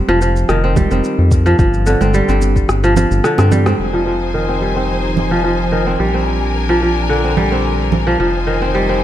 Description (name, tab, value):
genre	organic downtempo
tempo	109 BPM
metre	4/4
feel	swing 53% on 16ths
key	F dorian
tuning	A4 = 438 Hz
part	kora	arpeggios	0.0-9.0 s	D3 to C4	-16 LUFS	equal	vintage 12-bit sampler grit, low-pass filter, ping-pong delay
part	round analog bass	bass	0.0-9.0 s	F1 to G2	-17 LUFS	equal	sidechain pumping
part	congas	percussion	0.1-3.8 s	none	-23 LUFS	right 4 dB	none
part	electronic shaker, rim click and congas	drums	0.2-8.0 s	none	-20 LUFS	right 3 dB	none
part	electronic kick drum	drums	0.8-2.7 s	none	-15 LUFS	equal	none
part	bright studio string section	sustained chords	3.8-9.0 s	F3 to Ab5	-20 LUFS	left 2 dB	sidechain pumping
room	light reverb, small room ambience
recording	none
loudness	-12 LUFS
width	side -12 dB against mid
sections	0.0-3.8 A section; 3.8-9.0 B section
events	kick drops out 2.7-3.8; drum fill 3.2-3.8; band accent 3.7; filter sweep on kora 3.8-9.0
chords	0.0 F5; 1.6 G5; 3.8 Fm7; 6.0 Bb7; 8.2 Fm7